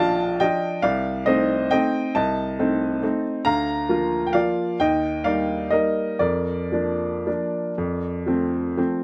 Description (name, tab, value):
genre	classical, piano waltz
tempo	109-148 BPM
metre	3/4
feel	rubato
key	Bb major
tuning	A4 = 442 Hz
part	clear upright piano	solo	0.0-9.0 s	Bb1 to Bb5	-23 LUFS	equal	none
room	light reverb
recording	close, detailed microphones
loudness	-23 LUFS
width	mono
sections	0.0-9.0 A section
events	none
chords	0.0 Bb; 0.8 Adim/C; 3.5 Bb/D; 4.8 Eb; 6.2 Bb/F; 7.8 F